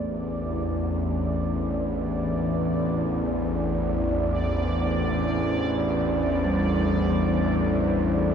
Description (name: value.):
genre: dark ambient drone.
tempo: free time.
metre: none.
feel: none.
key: A minor.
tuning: A4 = 439 Hz.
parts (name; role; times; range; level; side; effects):
dark analog pad; sustained chords; 0.0-8.3 s; D4 to C5; -34 LUFS; equal; none.
gamelan-type bronze metallophone; arpeggios; 0.0-8.3 s; G3 to A3; -31 LUFS; equal; ping-pong delay.
bowed-like drone; drone; 0.0-8.3 s; A1 to E2; -24 LUFS; left 1 dB; built-in reverb.
bubbling stepped-filter texture; texture; 0.0-8.3 s; D5; -32 LUFS; right 4 dB; chorus, built-in reverb.
room: wet cathedral reverb, RT60 5.0 s.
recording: none.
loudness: -23 LUFS.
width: side -7 dB against mid.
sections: 0.0-8.3 A section.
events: fade-out on synth texture 0.0-8.3.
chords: 0.0 A5.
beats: free time.